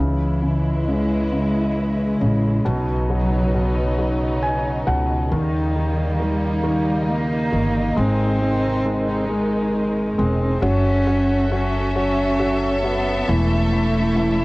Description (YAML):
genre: six-eight pop ballad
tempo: 45 BPM (dotted quarters)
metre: 6/8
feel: straight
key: C# minor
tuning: A4 = 444 Hz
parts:
  - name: dark cello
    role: melody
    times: 0.0-14.4 s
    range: D#3 to C#4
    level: -22 LUFS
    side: equal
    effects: cassette tape
  - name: clear concert grand piano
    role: accompaniment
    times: 0.0-14.4 s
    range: B2 to G#5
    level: -24 LUFS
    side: left 1 dB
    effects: none
  - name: warm studio string section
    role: sustained chords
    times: 0.0-14.4 s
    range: B#2 to E5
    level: -26 LUFS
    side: equal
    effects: none
  - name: upright bass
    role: bass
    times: 0.0-14.4 s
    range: E1 to D#2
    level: -23 LUFS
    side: equal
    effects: none
room: moderate booth ambience, RT60 0.2 s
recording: home recording on cassette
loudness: -18 LUFS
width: side -22 dB against mid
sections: 0.0-10.6 A section; 10.6-14.4 B section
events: grand piano fill 4.0-5.3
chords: 0.0 C#m; 2.6 Badd9; 5.3 D#7; 8.0 G#; 10.6 F#m7; 13.3 A/E